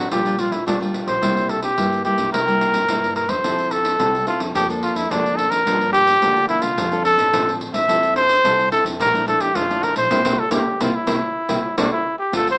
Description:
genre	samba and choro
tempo	108 BPM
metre	4/4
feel	straight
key	unclear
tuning	A4 = 439 Hz
part	warm trumpet	melody	0.0-12.6 s	D4 to E5	-18 LUFS	equal	none
part	nylon-string guitar	accompaniment	0.0-12.6 s	G2 to A4	-24 LUFS	equal	none
part	upright bass	bass	0.0-12.6 s	A1 to G2	-32 LUFS	equal	none
part	pandeiro	percussion	0.1-12.6 s	none	-26 LUFS	equal	none
room	moderate studio reverb, RT60 0.5 s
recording	small speaker sound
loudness	-16 LUFS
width	side -28 dB against mid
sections	0.0-12.3 A section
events	band accent 10.1-12.3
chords	0.1 Gm7/Bb; 1.2 C7; 3.4 Fmaj7; 4.6 Bbmaj7/F; 5.7 Gm7; 6.8 Dm7; 7.9 Fmaj7; 9.0 Bbmaj7#11; 10.1 C7

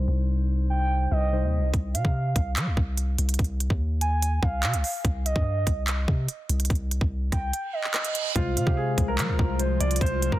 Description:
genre	hip hop, drill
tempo	145 BPM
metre	4/4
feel	half-time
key	C minor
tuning	A4 = 440 Hz
part	muted felt-like synth keys	accompaniment	0.0-1.8, 8.4-10.4 s	C3 to C5	-31 LUFS	left 3 dB	chorus
part	long sustained 808-style bass	bass	0.0-10.4 s	C2 to G3	-25 LUFS	equal	none
part	gliding portamento lead	second line	0.7-9.1 s	Eb5 to Ab5	-31 LUFS	right 2 dB	chorus, tape echo
part	drill drum kit	drums	1.7-10.4 s	handclaps, hi-hat, kick drum, rim click	-26 LUFS	equal	none
part	reverse cymbal	sound effects	7.7-8.4 s	none	-32 LUFS	right 8 dB	none
part	dark baby grand piano	melody	8.4-10.4 s	F4 to D5	-29 LUFS	equal	tape echo
part	warbly tape-like pad	sustained chords	9.0-10.4 s	C3 to F4	-33 LUFS	left 1 dB	chorus, built-in reverb, phaser
room	digital ambience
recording	dense, heavily limited modern master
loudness	-23 LUFS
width	side -15 dB against mid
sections	0.0-8.4 A section; 8.4-10.4 B section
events	kick muted 7.5-8.4; reverse cymbal 7.7-8.4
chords	0.0 Cm; 8.4 Fm/C

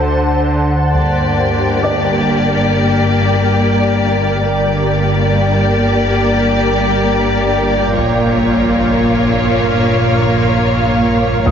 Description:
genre	cinematic, suspense film score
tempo	68 BPM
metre	4/4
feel	straight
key	G minor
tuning	A4 = 440 Hz
part	shimmering ambient pad	sustained chords	0.0-11.5 s	Bb4 to A5	-19 LUFS	equal	chorus, built-in reverb
part	rich symphonic cello section	bass	0.0-11.5 s	G2 to D3	-19 LUFS	right 1 dB	none
part	analog drone	drone	0.0-11.5 s	G1 to D2	-19 LUFS	equal	chorus
part	dark baby grand piano	texture	0.0-11.5 s	D5 to Eb6	-24 LUFS	left 1 dB	none
part	rich symphonic violin section	melody	0.9-11.5 s	Db5 to D5	-21 LUFS	left 4 dB	none
part	rich studio violin section	second line	0.9-11.5 s	F4 to G4	-21 LUFS	left 3 dB	none
part	rich symphonic viola section	accompaniment	0.9-11.5 s	Bb3	-19 LUFS	equal	none
part	rich symphonic double bass section	bass	0.9-11.5 s	G1 to Bb1	-22 LUFS	right 3 dB	none
part	taiko ensemble	drums	0.9-11.5 s	none	-20 LUFS	equal	none
room	moderate scoring stage reverb, RT60 1.5 s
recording	heavily compressed radio sound, nothing above 7.4 kHz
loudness	-11 LUFS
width	side -8 dB against mid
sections	0.9-11.5 A section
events	none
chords	0.0 D7; 0.9 Gm; 8.0 Bbm

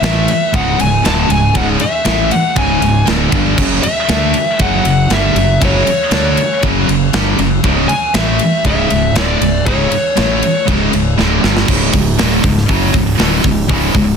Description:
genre	heavy metal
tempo	118 BPM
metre	4/4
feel	straight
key	C# phrygian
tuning	A4 = 440 Hz
part	high-gain lead guitar	melody	0.0-10.6 s	C#5 to A5	-17 LUFS	left 2 dB	distortion, tape echo
part	crunchy overdriven guitar	riff	0.0-14.1 s	C#2 to D4	-19 LUFS	equal	none
part	scooped high-gain guitar	riff	0.0-14.1 s	C#2 to D4	-16 LUFS	right 1 dB	distortion
part	fuzz fingered electric bass	bass	0.0-14.2 s	C#1 to D2	-18 LUFS	equal	overdrive
part	tight metal drum kit	drums	0.0-14.1 s	crash cymbal, hi-hat, kick drum, ride cymbal, snare drum	-17 LUFS	equal	none
room	light reverb, small room ambience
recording	dense, heavily limited modern master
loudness	-11 LUFS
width	side -6 dB against mid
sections	0.0-11.7 A section; 11.7-14.2 B section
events	drum fill 11.2-11.7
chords	0.0 C#m; 3.6 F#5; 7.6 C#m; 11.7 C#5

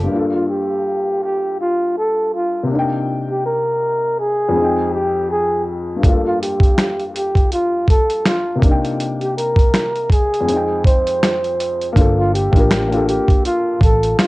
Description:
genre	lo-fi hip hop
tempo	81 BPM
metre	4/4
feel	swing 58% on 16ths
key	G minor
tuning	A4 = 440 Hz
part	breathy flugelhorn	melody	0.0-14.3 s	F4 to C5	-18 LUFS	equal	low-pass filter, cassette tape, plate reverb
part	dark upright piano	accompaniment	0.0-14.3 s	F2 to G5	-22 LUFS	left 2 dB	low-pass filter, cassette tape, plate reverb
part	vintage muted fingered electric bass	bass	0.0-0.1, 12.0-14.1 s	G1 to A1	-19 LUFS	equal	none
part	dusty soul sampler-style drum kit	drums	6.0-14.3 s	finger snaps, hi-hat, kick drum, snare drum	-14 LUFS	equal	none
room	moderate studio reverb, RT60 0.5 s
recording	home recording on cassette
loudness	-15 LUFS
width	side -20 dB against mid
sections	0.1-12.0 A section; 12.0-14.3 B section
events	none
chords	0.1 Gm9; 2.7 Cm9; 4.6 Fm9; 6.0 Gm9; 8.6 Cm9; 10.5 Fm9; 12.0 Gm9

